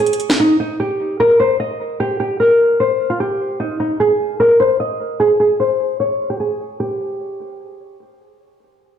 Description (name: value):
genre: hip hop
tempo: 150 BPM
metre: 4/4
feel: half-time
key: unclear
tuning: A4 = 441 Hz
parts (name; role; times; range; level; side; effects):
- nylon-string guitar; melody; 0.0-8.0 s; Eb4 to Eb5; -14 LUFS; equal; low-pass filter, digital delay
room: moderate recital hall reverb, RT60 1.3 s, digital ambience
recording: played on a big sound system in a bare room, stone room reverb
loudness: -14 LUFS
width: side -8 dB against mid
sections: 0.0-6.8 A section; 6.8-9.0 B section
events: filter sweep on nylon-string guitar 0.0-6.8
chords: none